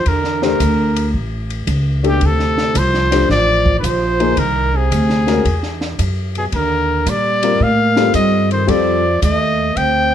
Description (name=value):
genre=jazz, small-group swing and bop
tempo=111 BPM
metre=4/4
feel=swing 68% on 8ths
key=unclear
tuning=A4 = 441 Hz
part: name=clear trumpet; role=melody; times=0.0-10.1 s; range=G4 to G5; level=-18 LUFS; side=left 2 dB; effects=plate reverb
part: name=breathy trombone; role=second line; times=0.0-10.1 s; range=Cb3 to C4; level=-21 LUFS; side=right 6 dB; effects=none
part: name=upright bass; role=bass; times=0.0-10.1 s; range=A1 to Bb2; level=-18 LUFS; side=equal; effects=none
part: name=compact cocktail drum kit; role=drums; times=0.1-9.9 s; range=hi-hat, kick drum, ride cymbal, snare drum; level=-24 LUFS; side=equal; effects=none
part: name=warm baby grand piano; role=accompaniment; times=0.4-9.0 s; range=G3 to C5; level=-18 LUFS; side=left 6 dB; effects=none
room=moderate club reverb, RT60 0.5 s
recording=none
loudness=-13 LUFS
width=side -10 dB against mid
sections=0.0-10.1 A section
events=none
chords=0.1 Em7b5; 1.1 A7; 2.2 Dm7; 4.4 Bb9/C; 5.5 Esus2; 6.5 Ebmaj7; 8.7 F7